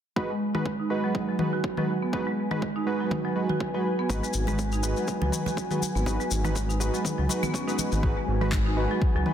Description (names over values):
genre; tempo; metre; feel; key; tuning
afro house; 122 BPM; 4/4; swing 56% on 16ths; G# minor; A4 = 440 Hz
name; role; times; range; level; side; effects
dark analog pad; sustained chords; 0.9-9.3 s; F#4 to G#5; -35 LUFS; left 1 dB; chorus, sidechain pumping
warm analog keys; stabs; 0.2-9.3 s; G#3 to B4; -31 LUFS; right 2 dB; chorus, sidechain pumping, low-pass filter, dub echo
electronic kick drum; drums; 0.2-9.1 s; none; -30 LUFS; equal; overdrive, high-pass filter on kick, high-pass filter on room
marimba with medium hard mallets; arpeggios; 0.3-9.3 s; D#3 to F#4; -30 LUFS; right 2 dB; sidechain pumping, low-pass filter, dub echo
afro-pop drum kit; drums; 0.5-9.3 s; handclaps, toms; -34 LUFS; left 3 dB; overdrive
dark detuned saw bass; bass; 4.1-9.2 s; G#1 to C#2; -27 LUFS; equal; sidechain pumping
congas; percussion; 4.1-7.9 s; none; -36 LUFS; right 4 dB; none
maracas; percussion; 4.1-8.0 s; none; -35 LUFS; left 6 dB; none
room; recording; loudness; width
light reverb; dense, heavily limited modern master; -24 LUFS; side -9 dB against mid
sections
0.2-8.0 A section; 8.0-9.3 B section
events
filter sweep on marimba 0.2-8.0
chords
0.2 G#m7